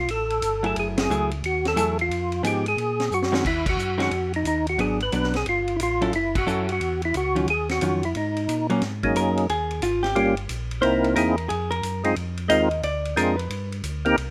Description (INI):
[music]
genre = soul jazz organ trio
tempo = 179 BPM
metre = 4/4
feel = swing 64% on 8ths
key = unclear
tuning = A4 = 442 Hz
[part]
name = percussive tonewheel organ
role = melody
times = 0.0-14.2 s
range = Gb3 to Cb5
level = -25 LUFS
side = equal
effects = slow rotary speaker, chorus vibrato
[part]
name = mellow tonewheel organ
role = bass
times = 0.0-14.3 s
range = Gb1 to Bb2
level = -32 LUFS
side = equal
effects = chorus vibrato, slow rotary speaker
[part]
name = vintage drum kit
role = drums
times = 0.1-14.3 s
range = crash cymbal, hi-hat, kick drum, ride cymbal, snare drum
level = -35 LUFS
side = equal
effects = none
[part]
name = vintage hollow-body jazz guitar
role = accompaniment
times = 0.6-13.7 s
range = Eb3 to Eb5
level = -27 LUFS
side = equal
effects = none
[sound]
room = small room reverb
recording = rough home demo mix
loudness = -24 LUFS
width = mono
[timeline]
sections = 0.0-8.8 A section; 8.8-14.3 B section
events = band accent 0.9, 3.6, 6.3; drum fill 3.1-3.4; hollow-body jazz guitar solo 8.8-14.3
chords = 0.0 Dbaug (rootless); 0.8 Gbm9; 2.1 Fm7b5; 2.8 Gb69; 3.4 Ebmadd9; 4.8 Abm7b5; 5.5 Gsus2; 6.1 Gbm7; 7.5 Ebm9; 8.1 Absus2; 8.8 Ab9sus4; 10.2 Gm7b5; 10.8 C7alt; 11.5 Fm7; 12.8 Dm7b5; 13.5 G5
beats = 0.09 0.43 | 0.76 1.10 1.43 1.77 | 2.11 2.44 2.78 3.11 | 3.45 3.78 4.12 4.46 | 4.79 5.13 5.46 5.80 | 6.13 6.47 6.80 7.14 | 7.48 7.81 8.15 8.48 | 8.82 9.15 9.49 9.82 | 10.16 10.49 10.83 11.16 | 11.50 11.83 12.16 12.50 | 12.83 13.17 13.50 13.83 | 14.17